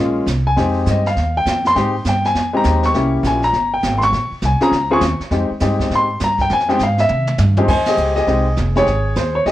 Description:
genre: jazz piano trio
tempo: 202 BPM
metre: 4/4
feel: swing 63% on 8ths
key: F minor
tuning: A4 = 440 Hz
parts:
  - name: warm grand piano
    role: melody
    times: 0.0-9.5 s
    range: F2 to Db6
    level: -16 LUFS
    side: left 1 dB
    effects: none
  - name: upright bass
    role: bass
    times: 0.0-9.5 s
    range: F1 to C3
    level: -19 LUFS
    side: right 1 dB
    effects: none
  - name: jazz brush drum kit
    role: drums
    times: 0.3-9.5 s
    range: brushed snare drum, crash cymbal, hi-hat, kick drum, ride cymbal, snare drum, toms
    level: -25 LUFS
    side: right 2 dB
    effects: none
room: moderate studio reverb, RT60 0.6 s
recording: worn, warbling old tape, cassette tape, warbly pitch drift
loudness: -14 LUFS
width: side -14 dB against mid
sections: 0.0-7.7 A section; 7.7-9.5 B section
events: grand piano solo 0.0-7.7; drum fill 7.1-7.7; band accent 7.8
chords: 0.0 Bbm9; 0.6 Fm9; 2.9 C7b9; 4.1 Bbm9; 5.3 Fm9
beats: 0.27 | 0.57 0.86 1.16 1.46 | 1.75 2.05 2.35 2.65 | 2.94 3.24 3.54 3.83 | 4.13 4.42 4.72 5.02 | 5.31 5.61 5.91 6.20 | 6.50 6.79 7.09 7.39 | 7.68 7.98 8.28 8.57 | 8.87 9.16 9.46

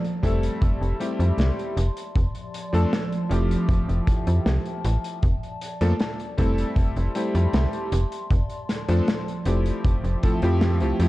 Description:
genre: vaporwave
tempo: 78 BPM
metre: 4/4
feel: straight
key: unclear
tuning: A4 = 440 Hz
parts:
  - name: warbly tape-like pad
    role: sustained chords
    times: 0.0-11.1 s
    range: F3 to C6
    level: -32 LUFS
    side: right 1 dB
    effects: chorus, built-in reverb, vintage 12-bit sampler grit
  - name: loose indie drum kit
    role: drums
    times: 0.0-11.1 s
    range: hi-hat, snare drum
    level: -29 LUFS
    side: equal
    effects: vintage 12-bit sampler grit
  - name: clear electric grand piano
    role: accompaniment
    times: 0.2-11.1 s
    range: F3 to A4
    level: -27 LUFS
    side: left 1 dB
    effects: lush chorus, analog delay
  - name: slap-like FM bass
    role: bass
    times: 0.2-11.1 s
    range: F1 to F2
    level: -22 LUFS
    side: equal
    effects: none
  - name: kick drum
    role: drums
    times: 0.2-10.4 s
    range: none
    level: -23 LUFS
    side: equal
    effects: vintage 12-bit sampler grit
room: light reverb, studio reverb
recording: dark, warm production, cassette tape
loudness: -21 LUFS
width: side -17 dB against mid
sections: 0.0-11.1 A section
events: none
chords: 0.0 Bbmaj7/F (rootless); 0.6 Am7/F; 1.8 Dm7/F; 3.7 Fmaj9; 5.2 Bbmaj7/F (rootless); 6.8 Am7/F; 7.9 Dm7/F; 9.8 Fmaj9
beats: 0.61 1.38 | 2.15 2.92 3.69 4.46 | 5.23 6.00 6.77 7.54 | 8.31 9.07 9.85 10.61

